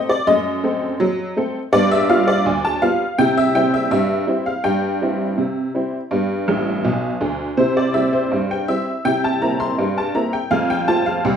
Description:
ragtime piano; 82 BPM; 2/4; straight; C major; A4 = 439 Hz
honky-tonk upright piano; solo; 0.0-11.4 s; A1 to C6; -16 LUFS; equal
wet studio reverb, RT60 0.7 s; heard from further back in the room; -16 LUFS; side -8 dB against mid
0.0-11.4 A section
honky-tonk piano fill 6.5-7.6
0.0 F#dim7; 1.7 G7; 3.2 C/G; 6.1 G; 7.6 C; 9.1 C7; 10.5 F
| 0.27 1.00 | 1.73 2.46 | 3.19 3.92 | 4.65 5.38 | 6.12 6.85 | 7.59 8.32 | 9.05 9.79 | 10.52 11.24

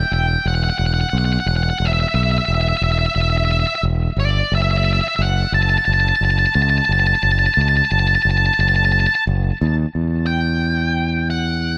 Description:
post-rock; 89 BPM; 4/4; straight; A4 = 440 Hz
octave-fuzz lead guitar; melody; 0.0-11.8 s; D5 to A5; -21 LUFS; equal; distortion, analog delay
growling fingered electric bass; bass; 0.0-11.8 s; E1 to E2; -20 LUFS; equal; overdrive
digital ambience; -18 LUFS; mono
0.0-9.9 A section; 9.9-11.8 B section
0.0 N.C.; 4.5 F#m; 9.9 Em
0.46 1.14 | 1.82 2.50 3.17 3.85 | 4.53 5.21 5.88 6.56 | 7.24 7.91 8.59 9.26 | 9.94 10.62 11.29

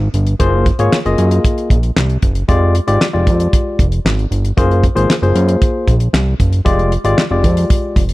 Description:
early-eighties boogie funk; 115 BPM; 4/4; straight; F dorian; A4 = 440 Hz
fat analog bass; bass; 0.0-8.1 s; F1 to Gb2; -14 LUFS; equal
damped 70s drum kit; drums; 0.1-8.1 s; handclaps, hi-hat, kick drum, snare drum; -16 LUFS; equal
barky tine electric piano; accompaniment; 0.4-8.0 s; Ab3 to Eb5; -16 LUFS; left 2 dB; overdrive
small room reverb; dark, warm production; -11 LUFS; side -19 dB against mid
0.0-8.1 A section
0.4 Gbmaj9#11; 2.5 Fm69; 4.6 Gbmaj9#11; 6.7 Fm69
| 0.40 0.92 1.44 1.96 | 2.49 3.01 3.53 4.05 | 4.57 5.09 5.62 6.14 | 6.66 7.18 7.70

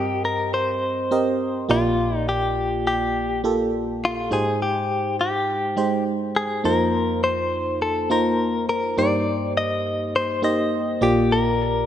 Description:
pop; 103 BPM; 4/4; straight; Bb major; A4 = 440 Hz
direct-recorded clean electric guitar; melody; 0.0-11.9 s; F4 to Eb5; -23 LUFS; left 2 dB; tremolo
FM electric piano; accompaniment; 0.0-11.9 s; Bb1 to Eb5; -22 LUFS; right 1 dB; chorus
moderate lush hall reverb, RT60 2.5 s; -20 LUFS; side -10 dB against mid
0.0-11.9 A section
0.0 Eb6/G; 1.7 Bb6; 4.3 Abmaj7; 6.6 F7sus4; 9.0 Eb6/G; 11.0 Bb6
0.24 0.82 1.40 | 1.99 2.57 3.15 3.73 | 4.32 4.90 5.48 6.06 | 6.65 7.23 7.81 8.39 | 8.98 9.56 10.14 10.72 | 11.31

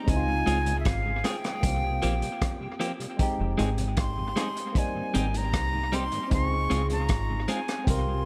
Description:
lovers rock reggae; 77 BPM; 4/4; straight; A4 = 440 Hz
breathy silver concert flute; melody; 0.0-8.3 s; E5 to Db6; -34 LUFS; equal; tape echo
barky tine electric piano; accompaniment; 0.0-8.3 s; G3 to Bb4; -36 LUFS; equal; overdrive, phaser, dub echo
deep dub fingered electric bass; bass; 0.1-8.2 s; F1 to Db2; -31 LUFS; equal
crunchy breakbeat drum kit; drums; 0.1-8.1 s; hi-hat, kick drum, rim click; -32 LUFS; equal; dub echo
mellow tonewheel organ; accompaniment; 0.3-8.1 s; F2 to G4; -41 LUFS; equal
clean electric guitar; stabs; 0.5-7.7 s; F3 to Ab4; -36 LUFS; equal; spring reverb, dub echo
light reverb, studio ambience; -27 LUFS; mono
0.0-8.3 A section
0.1 Dbmaj7; 1.6 C7sus4; 3.2 Fm7; 4.8 Abmaj7; 6.3 Dbmaj7
| 0.08 0.85 1.64 2.42 | 3.19 3.97 4.75 5.53 | 6.31 7.09 7.87

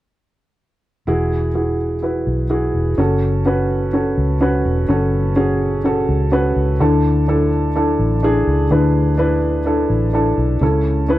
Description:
piano-driven pop; 126 BPM; 4/4; straight; F# minor; A4 = 442 Hz
dark upright piano; accompaniment; 1.1-11.2 s; C#3 to B4; -17 LUFS; equal
vintage muted fingered electric bass; bass; 1.1-11.2 s; E1 to D2; -19 LUFS; equal
studio ambience; dry, close 1970s-style studio recording; -15 LUFS; side -15 dB against mid
1.1-3.0 A section; 3.0-11.2 B section
1.1 Eadd9; 3.0 F#m; 6.8 Dsus2; 10.6 A
| 1.08 1.56 2.04 2.51 | 2.99 3.46 3.94 4.42 | 4.89 5.37 5.85 6.32 | 6.80 7.28 7.75 8.23 | 8.71 9.18 9.66 10.13 | 10.61 11.09

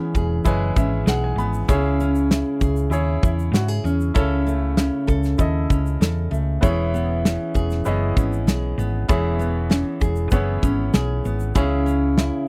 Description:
acoustic pop; 97 BPM; 4/4; straight; E major; A4 = 444 Hz
bright concert grand piano; accompaniment; 0.0-12.5 s; B3 to B5; -31 LUFS; equal
nylon-string guitar; accompaniment; 0.0-12.5 s; C#3 to A4; -26 LUFS; equal
hollow-body short-scale fingered electric bass; bass; 0.1-12.3 s; E1 to G#2; -25 LUFS; equal
natural country drum kit; drums; 0.1-12.3 s; kick drum, shaker, snare drum; -21 LUFS; equal
little or no reverb; dry, close 1970s-style studio recording; -21 LUFS; mono
0.0-12.5 A section
grand piano fill 0.5-1.7
0.0 E6; 1.7 C#m; 4.2 A/C#; 6.6 E6; 11.6 C#m
0.45 1.07 | 1.69 2.31 2.92 3.54 | 4.16 4.78 5.39 6.01 | 6.63 7.25 7.86 8.48 | 9.10 9.71 10.33 10.95 | 11.56 12.18

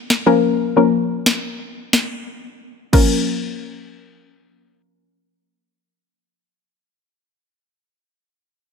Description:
dancehall; 90 BPM; 4/4; straight; Bb minor; A4 = 441 Hz
afro-pop drum kit; drums; 0.1-3.1 s; crash cymbal, kick drum, snare drum; -18 LUFS; equal
soft round pluck; accompaniment; 0.3-6.7 s; F3 to Bb4; -16 LUFS; left 3 dB; chorus, low-pass filter
light reverb; -15 LUFS; side -6 dB against mid
0.0-2.9 A section; 2.9-5.6 B section
0.0 Bbm
| 0.27 0.93 1.60 2.27 | 2.93 3.60 4.26 4.93

